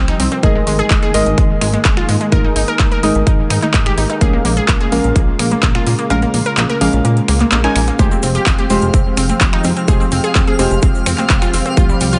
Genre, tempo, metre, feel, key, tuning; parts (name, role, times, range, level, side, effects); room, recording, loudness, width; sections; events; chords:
progressive house; 127 BPM; 4/4; straight; F minor; A4 = 442 Hz
lush unison pad; sustained chords; 0.0-12.2 s; Db3 to Ab4; -25 LUFS; equal; chorus, vintage 12-bit sampler grit, sidechain pumping
unison pluck; arpeggios; 0.0-12.2 s; G3 to Bb4; -22 LUFS; equal; sidechain pumping, dub echo
deep mellow chord stab; stabs; 0.0-12.2 s; F3 to Ab5; -22 LUFS; equal; chorus, sidechain pumping, dub echo
plucky analog bass; bass; 0.0-12.2 s; F1 to Bb2; -21 LUFS; equal; sidechain pumping
big-room dance drum kit; drums; 0.1-12.2 s; finger snaps, handclaps, hi-hat; -22 LUFS; equal; overdrive
woodblock, cowbell and congas; percussion; 0.1-11.9 s; -28 LUFS; equal
electronic kick drum; drums; 0.4-11.9 s; -16 LUFS; equal; overdrive
egg shaker; percussion; 8.0-12.2 s; -34 LUFS; equal
twinkling granular texture; texture; 8.4-12.2 s; F5; -30 LUFS; equal; built-in reverb, sidechain pumping
light reverb; nothing above 10.3 kHz; -14 LUFS; mono
0.0-12.2 A section
kick drops out 6.1-8.0
0.4 Absus2; 4.2 Bbm7; 8.0 Fmadd9